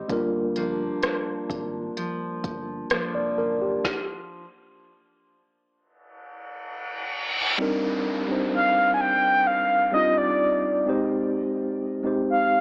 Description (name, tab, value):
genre	contemporary R&B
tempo	64 BPM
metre	4/4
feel	straight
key	C minor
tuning	A4 = 439 Hz
part	mellow tine electric piano	accompaniment	0.0-12.6 s	G3 to Eb5	-26 LUFS	equal	medium stereo tremolo, cassette tape
part	fingerpicked steel-string acoustic guitar	arpeggios	0.0-4.4 s	F3 to Eb4	-33 LUFS	equal	cassette tape, tape echo
part	round analog bass	bass	0.0-3.8 s	F1 to Ab1	-41 LUFS	equal	none
part	smooth R&B drum kit	drums	0.1-4.1 s	hi-hat, kick drum, rim click, snare drum	-28 LUFS	equal	cassette tape
part	reverse cymbal and downlifter	sound effects	6.4-12.6 s	none	-30 LUFS	equal	none
part	mellow horn-like synth lead	melody	8.5-12.6 s	D5 to Ab5	-20 LUFS	equal	chorus, cassette tape
room	light reverb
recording	home recording on cassette, AM radio sound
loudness	-22 LUFS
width	side -36 dB against mid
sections	0.0-7.6 A section; 7.6-12.6 B section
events	stop 3.8-7.6; reverse cymbal 6.4-7.6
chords	0.1 Gm7; 3.8 N.C.; 7.6 Cm9; 10.9 Abmaj7